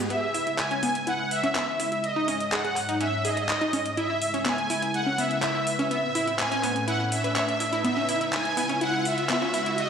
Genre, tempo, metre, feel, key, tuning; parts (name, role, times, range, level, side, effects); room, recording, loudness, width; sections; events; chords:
progressive house; 124 BPM; 4/4; straight; C# minor; A4 = 439 Hz
lush unison pad; sustained chords; 0.0-9.9 s; G#2 to C#5; -33 LUFS; equal; chorus
wide unison pluck; arpeggios; 0.0-9.7 s; B3 to C#5; -30 LUFS; equal; digital delay
riser; sound effects; 0.0-9.9 s; -36 LUFS; left 1 dB
soft supersaw; melody; 0.1-9.9 s; D#5 to G#5; -27 LUFS; right 1 dB; digital delay
pop drum kit; drums; 0.1-9.9 s; handclaps, hi-hat; -31 LUFS; equal; small room ambience
moderate digital room reverb, RT60 1.0 s; played on a big sound system in a bare room, large studio reverb, high-pass filter; -23 LUFS; side -7 dB against mid
0.1-9.9 A section
build-up 0.1-9.9; riser 0.1-9.9
0.1 C#m7; 2.0 G#sus4; 4.0 C#m7; 5.9 Aadd9; 7.8 C#m7